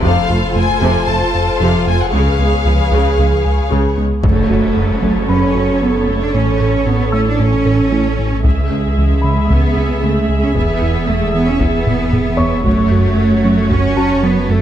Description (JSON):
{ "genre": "cinematic, hybrid orchestral and electronic film score", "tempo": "114 BPM", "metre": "4/4", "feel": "straight", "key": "F# minor from 4.2 s", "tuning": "A4 = 440 Hz", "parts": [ { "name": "warm symphonic violin section", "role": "melody", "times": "0.0-3.7 s", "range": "F5 to A5", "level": "-20 LUFS", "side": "left 5 dB", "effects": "none" }, { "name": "clear symphonic violin section", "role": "second line", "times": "0.0-4.0 s", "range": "A4 to C#5", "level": "-22 LUFS", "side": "left 5 dB", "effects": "none" }, { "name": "rich studio viola section", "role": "accompaniment", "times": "0.0-14.6 s", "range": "C3 to E5", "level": "-20 LUFS", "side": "right 1 dB", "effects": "none" }, { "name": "harp-like synth pluck", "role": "arpeggios", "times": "0.0-14.4 s", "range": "C#3 to A4", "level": "-24 LUFS", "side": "left 1 dB", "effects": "chorus, ping-pong delay" }, { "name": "round analog bass", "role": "riff", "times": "0.0-14.6 s", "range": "C#2 to A3", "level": "-19 LUFS", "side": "right 1 dB", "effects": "none" }, { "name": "rich symphonic cello section", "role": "bass", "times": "0.0-14.6 s", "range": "C#2 to D4", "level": "-18 LUFS", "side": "right 2 dB", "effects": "none" }, { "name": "rich symphonic double bass section", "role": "bass", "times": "0.0-14.6 s", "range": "F1 to F#2", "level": "-22 LUFS", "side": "right 2 dB", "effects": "none" }, { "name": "warm sub bass", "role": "bass", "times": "0.0-14.6 s", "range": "E1 to C#2", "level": "-21 LUFS", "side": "left 1 dB", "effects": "none" }, { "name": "taiko ensemble", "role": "drums", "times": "0.0-1.1, 4.2-5.3, 8.4-14.2 s", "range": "none", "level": "-20 LUFS", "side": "left 1 dB", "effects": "none" }, { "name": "warm grand piano", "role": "texture", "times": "0.0-14.6 s", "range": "A4 to E6", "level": "-28 LUFS", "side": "left 4 dB", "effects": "ping-pong delay" }, { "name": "impact", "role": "sound effects", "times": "4.2-6.3 s", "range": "none", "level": "-22 LUFS", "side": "left 1 dB", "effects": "none" } ], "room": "moderate recital hall reverb, RT60 1.5 s", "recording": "none", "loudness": "-12 LUFS", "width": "side -10 dB against mid", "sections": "0.0-4.2 A section; 4.2-14.6 B section", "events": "impact 4.2-6.3; drum fill 11.9-12.7", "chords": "0.0 F; 2.1 C#7; 4.2 F#m; 6.3 A; 8.4 C#m; 10.6 E; 12.7 F#m" }